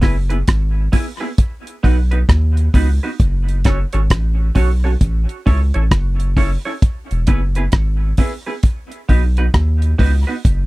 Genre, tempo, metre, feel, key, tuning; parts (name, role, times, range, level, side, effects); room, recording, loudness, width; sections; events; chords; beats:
dub reggae; 66 BPM; 4/4; swing 63% on 16ths; A4 = 439 Hz
clean electric guitar; accompaniment; 0.0-10.3 s; B3 to C#5; -24 LUFS; right 2 dB; lush chorus, dub echo
soft dub sub bass; bass; 0.0-10.7 s; E1 to D#2; -15 LUFS; equal
damped 70s drum kit; drums; 0.0-10.7 s; hi-hat, kick drum, rim click; -15 LUFS; equal
little or no reverb; dry, close 1970s-style studio recording; -14 LUFS; side -20 dB against mid
0.0-10.7 A section
0.0 E; 1.4 B; 3.2 F#m; 5.0 A; 6.8 E; 8.6 B
0.48 1.39 2.29 | 3.20 4.11 5.01 5.92 | 6.83 7.73 8.64 9.54 | 10.45